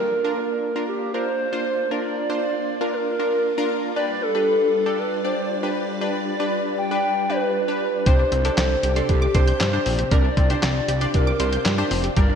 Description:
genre	synth-pop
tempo	117 BPM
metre	4/4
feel	straight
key	unclear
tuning	A4 = 442 Hz
part	hollow clarinet-like synth lead	melody	0.0-12.4 s	G4 to G5	-24 LUFS	equal	chorus, slapback echo, ping-pong delay
part	funky polysynth comp	accompaniment	0.0-12.4 s	D4 to D5	-26 LUFS	equal	chorus, slapback echo
part	soft string machine	sustained chords	0.0-12.4 s	C3 to D5	-29 LUFS	equal	ensemble chorus
part	wide unison pluck	arpeggios	8.1-12.4 s	G3 to G6	-31 LUFS	right 1 dB	auto-pan, slapback echo, ping-pong delay
part	fat analog bass	bass	8.1-12.3 s	F1 to G2	-24 LUFS	equal	none
part	lo-fi sampler-style drum kit	drums	8.1-12.3 s	handclaps, hi-hat, kick drum, snare drum	-21 LUFS	equal	none
room	wet scoring stage reverb, RT60 1.9 s, digital ambience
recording	big arena sound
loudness	-19 LUFS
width	side -7 dB against mid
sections	0.0-12.4 A section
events	none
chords	0.0 Bb; 4.0 G7; 8.1 Gm7

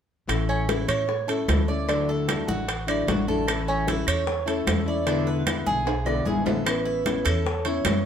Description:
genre	latin, Cuban son and guajira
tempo	151 BPM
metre	4/4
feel	straight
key	A major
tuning	A4 = 440 Hz
part	nylon-string guitar	accompaniment	0.3-8.0 s	B2 to E4	-28 LUFS	left 4 dB	none
part	upright bass	bass	0.3-8.1 s	A1 to A2	-29 LUFS	right 1 dB	none
part	bongos	percussion	0.3-8.1 s	none	-34 LUFS	left 6 dB	none
part	claves	percussion	0.3-8.1 s	none	-36 LUFS	right 1 dB	none
part	congas	percussion	0.3-8.0 s	none	-31 LUFS	left 2 dB	none
part	timbales	percussion	0.3-8.0 s	none	-29 LUFS	right 4 dB	none
part	Cuban tres	arpeggios	0.5-8.0 s	C#4 to D5	-28 LUFS	right 3 dB	none
part	vibraphone with hard mallets	melody	6.7-8.0 s	B4 to C#5	-29 LUFS	right 2 dB	none
room	moderate studio reverb, RT60 0.7 s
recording	band playing live in one room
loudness	-22 LUFS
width	side -8 dB against mid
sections	0.3-6.7 A section; 6.7-8.1 B section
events	drum fill 5.9-6.7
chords	0.3 A; 1.9 Dadd9; 3.5 A; 5.1 E7; 6.7 Aadd9

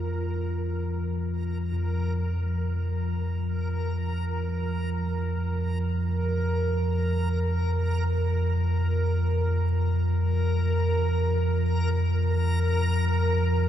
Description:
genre	dark ambient drone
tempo	free time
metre	none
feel	none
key	unclear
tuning	A4 = 439 Hz
part	gamelan-type bossed gongs	arpeggios	0.0-8.9 s	F2 to F4	-39 LUFS	equal	none
part	deep rumbling drone	drone	0.0-13.7 s	F2 to F3	-24 LUFS	equal	built-in reverb
part	backwards swelling texture	texture	0.0-13.7 s	Bb4	-32 LUFS	equal	built-in reverb
room	wet cathedral reverb, RT60 5.9 s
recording	dark, warm production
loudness	-24 LUFS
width	side -10 dB against mid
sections	0.0-13.7 A section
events	fade-in on synth drone 0.0-13.7; fade-in on synth texture 0.0-13.7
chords	0.0 Fsus4

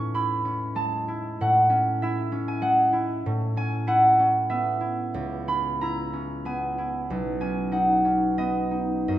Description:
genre	classical, solo harp piece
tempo	95 BPM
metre	3/4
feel	rubato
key	unclear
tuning	A4 = 444 Hz
part	concert harp	solo	0.0-9.2 s	B1 to C#6	-22 LUFS	equal	none
room	moderate recital hall reverb, RT60 1.8 s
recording	dark, warm production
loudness	-22 LUFS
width	side -13 dB against mid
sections	0.0-9.2 A section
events	none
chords	0.0 Amaj7; 5.1 C#m7; 7.1 Badd9

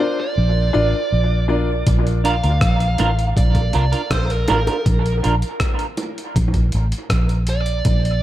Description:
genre	dub reggae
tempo	80 BPM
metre	4/4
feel	straight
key	Bb major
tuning	A4 = 440 Hz
part	dark smooth lead guitar	melody	0.0-8.2 s	Bb4 to F5	-25 LUFS	right 2 dB	overdrive, dub echo
part	warm upright piano	stabs	0.0-1.7 s	D4 to D5	-23 LUFS	left 3 dB	dub echo
part	vintage muted fingered electric bass	bass	0.4-8.2 s	A1 to D2	-18 LUFS	equal	none
part	breakbeat sampler-style drum kit	drums	1.9-8.2 s	hi-hat, kick drum, rim click	-21 LUFS	equal	none
part	semi-hollow electric guitar	accompaniment	2.2-5.3 s	D4 to Bb4	-24 LUFS	right 4 dB	analog chorus, dub echo
part	bongos	percussion	3.0-6.2 s	none	-28 LUFS	right 2 dB	dub echo
room	light reverb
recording	echo-heavy mix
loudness	-16 LUFS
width	side -13 dB against mid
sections	0.0-8.2 A section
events	break 0.0-1.9; part muted 4.9-8.2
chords	0.0 Bb

